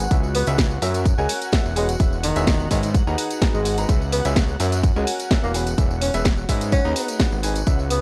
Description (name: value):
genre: piano house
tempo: 127 BPM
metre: 4/4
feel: straight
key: G# minor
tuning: A4 = 438 Hz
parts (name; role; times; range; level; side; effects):
- analog string pad; sustained chords; 0.0-8.0 s; F#4 to F#5; -35 LUFS; equal; ensemble chorus, sidechain pumping
- fat analog bass; bass; 0.0-8.0 s; E1 to G#2; -26 LUFS; equal; tube saturation, sidechain pumping
- house drum kit; drums; 0.0-8.0 s; hi-hat, snare drum, tambourine; -29 LUFS; equal; none
- tambourine; percussion; 0.0-7.9 s; none; -41 LUFS; equal; none
- clear upright piano; riff; 0.1-7.8 s; C#4 to A#5; -31 LUFS; equal; sidechain pumping, tape echo
- electronic kick drum; drums; 0.1-7.8 s; none; -22 LUFS; equal; none
- breathy tenor saxophone; melody; 0.3-8.0 s; D#3 to C#4; -29 LUFS; equal; tape echo
room: little or no reverb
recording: dry, gritty hardware recording, cassette tape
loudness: -21 LUFS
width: mono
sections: 0.0-8.0 A section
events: none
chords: 0.1 C#m7; 0.8 F#7; 1.8 E6; 2.9 G#m7; 3.9 C#m7; 4.6 F#7; 5.5 E6; 6.7 G#m7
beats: | 0.11 0.58 1.05 1.53 | 2.00 2.47 2.94 3.42 | 3.89 4.36 4.83 5.31 | 5.78 6.25 6.72 7.20 | 7.67